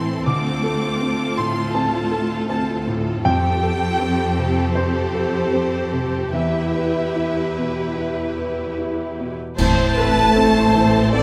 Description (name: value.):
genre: cinematic, emotional film score for orchestra.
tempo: 72-82 BPM.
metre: 4/4.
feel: rubato.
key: A minor.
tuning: A4 = 439 Hz.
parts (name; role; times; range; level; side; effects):
clear symphonic violin section; melody; 0.0-11.2 s; A4 to C5; -32 LUFS; equal; none.
warm symphonic violin section; second line; 0.0-11.2 s; C5 to D6; -28 LUFS; equal; none.
clear symphonic viola section; accompaniment; 0.0-11.2 s; C4 to C5; -28 LUFS; equal; none.
warm grand piano; accompaniment; 0.0-11.2 s; D2 to D6; -25 LUFS; equal; none.
warm studio cello section; bass; 0.0-11.2 s; D2 to A2; -27 LUFS; equal; none.
mellow large flute ensemble; second line; 9.6-11.2 s; D5 to A5; -28 LUFS; equal; none.
warm French horn section; sustained chords; 9.6-11.2 s; D3 to A3; -25 LUFS; equal; none.
warm symphonic double bass section; bass; 9.6-11.2 s; A1; -27 LUFS; equal; none.
clash cymbals and concert bass drum; percussion; 9.6-11.1 s; none; -27 LUFS; equal; none.
room: moderate scoring stage reverb, RT60 1.6 s.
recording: none.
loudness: -20 LUFS.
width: mono.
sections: 0.0-9.6 A section; 9.6-11.2 B section.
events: band accent 9.6-10.4.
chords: 0.3 Dm7; 3.2 Fadd9; 6.3 Em; 9.6 Am.